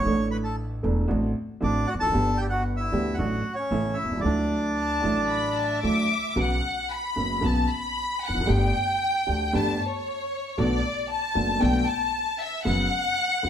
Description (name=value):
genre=tango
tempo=115 BPM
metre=4/4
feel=rubato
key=D major, B minor from 6.4 s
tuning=A4 = 438 Hz
part: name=bandoneon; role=melody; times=0.0-5.8 s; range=C#4 to C#6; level=-27 LUFS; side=equal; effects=none
part: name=warm upright piano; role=accompaniment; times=0.0-13.5 s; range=E1 to A4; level=-27 LUFS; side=right 1 dB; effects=none
part: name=upright bass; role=bass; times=0.0-13.5 s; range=E1 to D2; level=-29 LUFS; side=equal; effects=none
part: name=warm studio violin section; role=second line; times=4.8-13.5 s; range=C#5 to D6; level=-26 LUFS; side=left 2 dB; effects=none
room=wet studio reverb, RT60 0.9 s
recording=band playing live in one room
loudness=-23 LUFS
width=side -9 dB against mid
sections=0.0-6.4 A section; 6.4-13.5 B section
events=violin section solo 6.4-13.5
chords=0.1 Asus4; 1.1 D7/A; 2.1 G; 3.2 D/A; 3.7 A; 4.2 Dadd9; 6.4 Bsus2; 8.5 Gsus2; 10.6 Bm7; 12.7 F#sus4